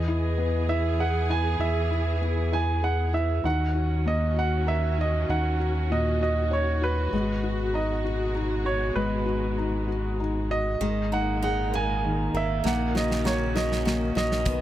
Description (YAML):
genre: six-eight pop ballad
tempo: 66 BPM (dotted quarters)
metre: 6/8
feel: straight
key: unclear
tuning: A4 = 440 Hz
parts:
  - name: clear concert grand piano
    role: melody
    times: 0.0-14.6 s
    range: B4 to G#5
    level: -29 LUFS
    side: right 4 dB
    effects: digital delay
  - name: felt-muted upright piano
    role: accompaniment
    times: 0.0-14.6 s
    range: A#2 to C#5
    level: -29 LUFS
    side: left 3 dB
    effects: none
  - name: rich studio string section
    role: sustained chords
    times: 0.0-14.6 s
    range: A#2 to G#4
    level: -33 LUFS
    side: right 2 dB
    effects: none
  - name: round analog bass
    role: bass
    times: 0.0-14.6 s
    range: G#1 to E2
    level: -27 LUFS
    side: equal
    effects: none
  - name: picked steel-string acoustic guitar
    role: arpeggios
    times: 10.8-14.6 s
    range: D#3 to F#4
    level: -34 LUFS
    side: right 2 dB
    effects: none
  - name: damped 70s drum kit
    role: drums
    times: 12.7-14.6 s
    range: hi-hat, kick drum, snare drum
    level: -29 LUFS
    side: right 1 dB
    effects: none
room: little or no reverb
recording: none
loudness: -23 LUFS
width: side -12 dB against mid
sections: 0.0-10.8 A section; 10.8-14.6 B section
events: drum fill 12.6-14.5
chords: 0.0 E; 3.5 D#m7; 7.1 G#m7; 10.8 G#sus2; 12.6 D#m7/A#